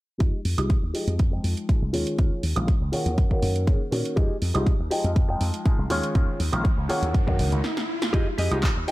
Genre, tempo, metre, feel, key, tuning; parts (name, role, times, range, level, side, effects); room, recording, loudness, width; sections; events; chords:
filtered disco house; 121 BPM; 4/4; straight; F minor; A4 = 440 Hz
clear grand piano; accompaniment; 0.2-8.9 s; Eb3 to G5; -29 LUFS; equal; phaser, vintage 12-bit sampler grit, sidechain pumping, low-pass filter
direct-recorded clean electric guitar; riff; 0.2-8.8 s; F4 to Eb5; -32 LUFS; equal; sidechain pumping, low-pass filter
slap bass with an envelope filter; bass; 0.2-8.8 s; Bb1 to Bb2; -26 LUFS; equal; sidechain pumping, low-pass filter
electronic kick drum; drums; 0.2-8.7 s; -22 LUFS; equal
punchy analog drum machine; drums; 0.2-8.9 s; handclaps, hi-hat, snare drum, woodblock; -32 LUFS; right 2 dB; overdrive
tambourine; percussion; 0.2-7.6 s; barely audible
riser; sound effects; 5.9-8.1 s; -35 LUFS; right 1 dB
digital ambience; -21 LUFS; side -18 dB against mid
0.2-8.1 A section
filter sweep 0.2-8.1; riser 5.9-8.1; drum fill 7.6-8.1; stop 7.6-8.1
0.2 Fm9; 1.9 Eb9sus4; 3.2 Gb6; 4.2 Fm9; 5.9 Eb9sus4; 7.1 Gb6; 8.1 Fm9